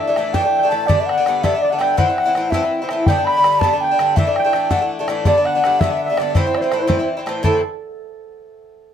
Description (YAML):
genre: celtic folk, Celtic jig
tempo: 110 BPM (dotted quarters)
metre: 6/8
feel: straight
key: A dorian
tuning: A4 = 439 Hz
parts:
  - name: baroque flute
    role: melody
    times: 0.0-7.6 s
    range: A4 to B5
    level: -18 LUFS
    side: right 1 dB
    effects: plate reverb
  - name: concert harp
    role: second line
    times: 0.0-8.0 s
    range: A4 to B5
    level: -26 LUFS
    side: equal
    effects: none
  - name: Irish bouzouki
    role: accompaniment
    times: 0.0-7.6 s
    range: G2 to E4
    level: -20 LUFS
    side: left 3 dB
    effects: none
  - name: bodhran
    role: percussion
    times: 0.2-7.6 s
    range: none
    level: -19 LUFS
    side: left 1 dB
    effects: none
room: wet studio reverb, RT60 0.5 s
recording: none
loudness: -15 LUFS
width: side -9 dB against mid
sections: 0.0-7.4 A section; 7.4-8.5 B section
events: none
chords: 0.0 Dsus2; 0.9 G; 2.0 Am; 3.1 G; 4.2 Dsus2; 5.3 G; 6.4 Am